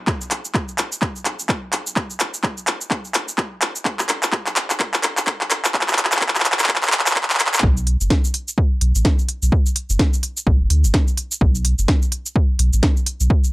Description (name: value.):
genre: minimal techno.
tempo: 127 BPM.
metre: 4/4.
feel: swing 59% on 16ths.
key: B minor.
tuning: A4 = 440 Hz.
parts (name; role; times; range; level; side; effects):
saturated sub bass; bass; 0.0-13.3 s; F#1 to D2; -17 LUFS; equal; sidechain pumping, high-pass filter.
electronic kick drum; drums; 0.1-13.4 s; none; -18 LUFS; equal; overdrive.
techno drum kit; drums; 0.1-13.5 s; cabasa, handclaps, hi-hat, snare drum; -19 LUFS; equal; none.
room: light reverb.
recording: dry, gritty hardware recording, high-pass filter.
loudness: -17 LUFS.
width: side -20 dB against mid.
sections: 0.0-7.6 A section; 7.6-13.5 B section.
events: build-up 0.0-7.6; drum fill 0.0-7.6; drop 7.6-13.5.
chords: none.